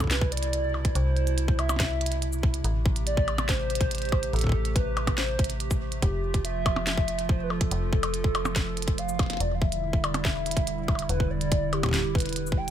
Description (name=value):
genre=IDM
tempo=142 BPM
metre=4/4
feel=straight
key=unclear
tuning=A4 = 439 Hz
part: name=warbly nostalgic lead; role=melody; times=0.0-12.7 s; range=G4 to G5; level=-32 LUFS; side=equal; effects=wide subtle chorus, cassette tape, digital delay
part: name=warbly tape-like pad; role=sustained chords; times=0.0-12.7 s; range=B2 to G4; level=-34 LUFS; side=right 4 dB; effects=chorus, built-in reverb, vintage 12-bit sampler grit
part: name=metallic FM bass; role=bass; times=0.0-12.7 s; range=E1 to C2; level=-30 LUFS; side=equal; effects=none
part: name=electronic kick drum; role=drums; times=0.0-12.6 s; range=none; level=-25 LUFS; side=equal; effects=small room ambience
part: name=glitchy drum kit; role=drums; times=0.0-12.7 s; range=cabasa, hi-hat, percussion blips, snare drum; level=-31 LUFS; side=equal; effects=small room ambience
room=little or no reverb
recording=none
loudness=-24 LUFS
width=side -10 dB against mid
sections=0.0-12.7 A section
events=drum fill 9.2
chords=0.0 Cmaj7; 2.6 Am7; 6.0 Fmaj7; 9.4 Em7